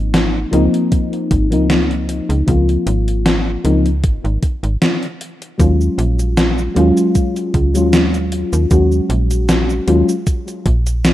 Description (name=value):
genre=vaporwave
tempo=77 BPM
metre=4/4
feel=swing 54% on 16ths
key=Db major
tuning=A4 = 440 Hz
part: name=mellow FM electric piano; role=accompaniment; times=0.0-10.1 s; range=F3 to Gb4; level=-17 LUFS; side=left 2 dB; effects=wide subtle chorus, tape echo
part: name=slap-like FM bass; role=bass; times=0.0-11.1 s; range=Ab1 to Eb2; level=-16 LUFS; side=equal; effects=none
part: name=gated 80s digital drum machine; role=drums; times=0.1-11.1 s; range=cabasa, hi-hat, snare drum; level=-17 LUFS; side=equal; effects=gated reverb, gated reverb snare, overdrive
part: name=electronic kick drum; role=drums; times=0.9-10.8 s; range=none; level=-16 LUFS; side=equal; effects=overdrive
room=little or no reverb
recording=rough home demo mix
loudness=-13 LUFS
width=side -14 dB against mid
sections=0.0-11.1 A section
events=none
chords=0.0 Dbmaj13; 5.6 Ebm11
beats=0.14 0.92 1.70 | 2.48 3.26 4.04 4.82 | 5.59 6.37 7.15 7.93 | 8.71 9.49 10.27 11.05